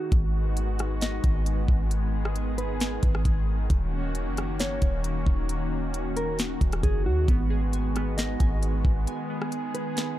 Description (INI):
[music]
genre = hip hop, atmospheric cloud-rap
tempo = 134 BPM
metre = 4/4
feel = half-time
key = G# minor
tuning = A4 = 441 Hz
[part]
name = mellow electric guitar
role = melody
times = 0.0-10.2 s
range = F#4 to D#5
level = -35 LUFS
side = right 2 dB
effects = low-pass filter, tape echo
[part]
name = warm analog pad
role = sustained chords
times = 0.0-10.2 s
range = D#3 to G#4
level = -32 LUFS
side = left 1 dB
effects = lush chorus, sidechain pumping
[part]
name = glassy digital keys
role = arpeggios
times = 0.0-0.1, 7.3-10.2 s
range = B3 to G#5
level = -35 LUFS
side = right 5 dB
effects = chorus, low-pass filter, tape echo
[part]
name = warm 808-style bass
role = bass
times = 0.1-9.1 s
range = D#1 to D#2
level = -26 LUFS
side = equal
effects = none
[part]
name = trap drum kit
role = drums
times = 0.1-10.1 s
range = hi-hat, kick drum, rim click, snare drum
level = -26 LUFS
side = equal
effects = none
[sound]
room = digital ambience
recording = dark, warm production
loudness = -24 LUFS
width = side -14 dB against mid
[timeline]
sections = 0.1-10.2 A section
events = none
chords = 0.1 G#m7; 3.7 D#m7; 7.3 G#m7